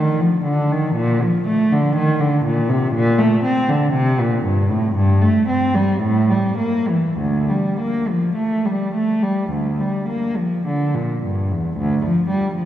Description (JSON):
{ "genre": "classical, baroque-style suite movement for unaccompanied cello", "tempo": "47-61 BPM", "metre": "4/4", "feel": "rubato", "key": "D minor", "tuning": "A4 = 440 Hz", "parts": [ { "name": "warm cello", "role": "solo", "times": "0.0-12.7 s", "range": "D2 to C4", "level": "-16 LUFS", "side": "equal", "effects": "none" } ], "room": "wet church reverb, RT60 3.7 s", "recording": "heard from further back in the room", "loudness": "-16 LUFS", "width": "side -11 dB against mid", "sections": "0.0-11.8 A section", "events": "none", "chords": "none" }